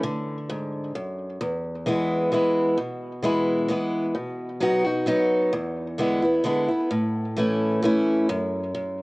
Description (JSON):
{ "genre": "bluegrass", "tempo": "131 BPM", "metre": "3/4", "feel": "straight", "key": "A major", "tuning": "A4 = 441 Hz", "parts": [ { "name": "picked acoustic archtop guitar", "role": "solo", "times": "0.0-9.0 s", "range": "E2 to F#4", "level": "-22 LUFS", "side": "equal", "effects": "cassette tape, tape echo" } ], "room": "moderate studio reverb, RT60 0.6 s", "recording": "home recording on cassette", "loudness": "-22 LUFS", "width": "side -24 dB against mid", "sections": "0.0-8.3 A section", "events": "none", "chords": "0.0 D; 1.4 E; 4.2 B; 5.5 E7; 6.9 A; 8.3 N.C." }